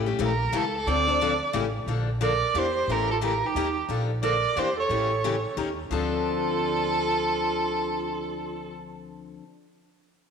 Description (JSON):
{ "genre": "acoustic string swing (jazz manouche)", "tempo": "179 BPM", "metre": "3/4", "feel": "swing 62% on 8ths", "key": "D minor", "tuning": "A4 = 440 Hz", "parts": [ { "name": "picked steel-string acoustic guitar", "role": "accompaniment", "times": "0.0-9.4 s", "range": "C#3 to Bb4", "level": "-29 LUFS", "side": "left 8 dB", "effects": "none" }, { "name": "upright bass", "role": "bass", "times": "0.0-9.4 s", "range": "A1 to E2", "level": "-31 LUFS", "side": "equal", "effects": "none" }, { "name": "clear violin", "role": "melody", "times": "0.2-8.7 s", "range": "G4 to D5", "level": "-27 LUFS", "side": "right 2 dB", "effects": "none" }, { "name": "warm clarinet", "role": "second line", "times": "2.2-8.7 s", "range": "Eb4 to Bb4", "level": "-31 LUFS", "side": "right 8 dB", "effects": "none" } ], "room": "wet echo chamber reverb, RT60 2.1 s", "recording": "1960s-style stereo with parts hard left and right", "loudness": "-23 LUFS", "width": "side -6 dB against mid", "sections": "0.0-1.9 A section; 1.9-5.9 B section; 5.9-7.9 C section", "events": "none", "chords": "0.0 A7b9; 0.9 Dm7; 1.5 A7; 1.9 Bbmaj7; 2.5 Em7b5; 2.9 A7; 3.5 Eb7; 3.9 Bbmaj7; 4.6 Em7b5; 4.9 A7; 5.6 Eb7; 5.9 Dm7", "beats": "0.19 0.53 | 0.86 1.20 1.53 | 1.87 2.20 2.54 | 2.88 3.21 3.55 | 3.88 4.22 4.55 | 4.89 5.23 5.56 | 5.90 6.24 6.57 | 6.91 7.24 7.58" }